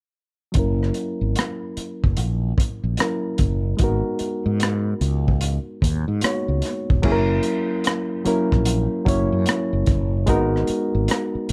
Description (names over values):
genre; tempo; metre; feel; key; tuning
R&B, neo-soul; 74 BPM; 4/4; swing 63% on 16ths; unclear; A4 = 440 Hz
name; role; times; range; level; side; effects
reed electric piano; accompaniment; 0.5-11.5 s; F#3 to C#5; -26 LUFS; equal; low-pass filter
crunchy breakbeat drum kit; drums; 0.5-11.5 s; crash cymbal, hi-hat, kick drum, rim click; -25 LUFS; equal; none
fretless electric bass; bass; 0.6-11.5 s; E1 to G#2; -24 LUFS; equal; none
room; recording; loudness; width
light reverb; dark, warm production; -22 LUFS; mono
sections
0.5-7.0 A section; 7.0-11.5 B section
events
filter sweep on reed electric piano 0.5-7.0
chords
0.5 F#7; 3.8 G#m9; 7.0 F#7; 10.3 G#m9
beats
| 0.55 1.36 2.17 2.98 | 3.79 4.60 5.41 6.22 | 7.03 7.84 8.65 9.47 | 10.28 11.09